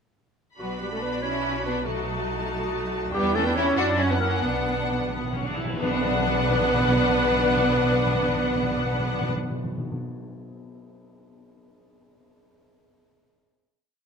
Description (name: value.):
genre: classical, dramatic, fast romantic movement for symphony orchestra.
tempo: 85-95 BPM (dotted quarters).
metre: 6/8.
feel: straight.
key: B minor.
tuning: A4 = 442 Hz.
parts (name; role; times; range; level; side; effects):
warm symphonic violin section; melody; 0.6-9.3 s; F#5 to B5; -32 LUFS; left 5 dB; none.
mellow clarinet; second line; 0.6-9.3 s; F#4 to D5; -29 LUFS; left 2 dB; none.
warm symphonic violin section; second line; 0.6-9.3 s; A3 to B4; -31 LUFS; left 1 dB; none.
rich symphonic viola section; accompaniment; 0.6-9.3 s; B3 to F#4; -28 LUFS; equal; none.
rich symphonic cello section; bass; 0.6-9.3 s; F#3 to D4; -30 LUFS; right 3 dB; none.
warm symphonic double bass section; bass; 0.6-9.3 s; B1 to F#2; -31 LUFS; right 4 dB; none.
timpani; percussion; 1.9-10.0 s; B2; -30 LUFS; equal; none.
cymbal swell and tam-tam; percussion; 3.1-7.6 s; none; -36 LUFS; equal; none.
room: moderate scoring stage reverb, RT60 1.5 s.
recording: none.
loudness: -22 LUFS.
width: side -6 dB against mid.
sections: 0.6-5.8 A section; 5.8-8.5 final chord.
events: slowing down 2.5-5.8; timpani fill 4.4-5.8; band accent 5.8-6.3.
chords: 0.6 Bm; 1.9 B7; 3.1 Em7; 3.8 F#7; 4.4 Bm.